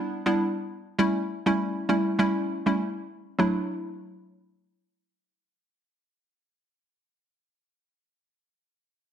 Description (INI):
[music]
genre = afrobeats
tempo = 100 BPM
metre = 4/4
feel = swing 58% on 16ths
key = D major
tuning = A4 = 440 Hz
[part]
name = hollow square pluck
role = accompaniment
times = 0.0-7.3 s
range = F#3 to E4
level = -24 LUFS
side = right 1 dB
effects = chorus
[sound]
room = moderate plate reverb, RT60 1.3 s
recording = dense, heavily limited modern master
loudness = -24 LUFS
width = side -9 dB against mid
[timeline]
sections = 0.0-3.4 A section; 3.4-5.8 B section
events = none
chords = 0.0 G6; 1.0 A7; 3.4 Dadd9